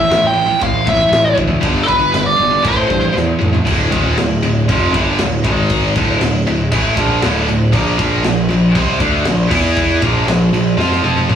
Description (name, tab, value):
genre	heavy metal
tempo	118 BPM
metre	4/4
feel	straight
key	D minor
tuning	A4 = 441 Hz
part	nasal lead guitar with a parked wah	melody	0.0-3.1 s	A4 to G5	-13 LUFS	right 1 dB	overdrive
part	heavy high-gain guitar	riff	0.0-11.4 s	D2 to F4	-16 LUFS	equal	distortion
part	fuzz picked electric bass	bass	0.0-11.4 s	D1 to G2	-18 LUFS	equal	overdrive
part	tight metal drum kit	drums	0.1-11.4 s	crash cymbal, kick drum, snare drum, toms	-20 LUFS	equal	none
room	moderate booth ambience, RT60 0.2 s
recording	rough rehearsal-room recording, warm saturation, small room ambience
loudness	-12 LUFS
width	side -8 dB against mid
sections	0.0-3.7 A section; 3.7-11.4 B section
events	drum fill 3.2-3.7, 10.8-11.4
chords	0.0 A5; 1.6 G5; 2.7 Am; 3.7 Dm; 5.4 G#5; 6.0 Dm; 7.7 Bb5; 9.5 E5; 10.0 Bb5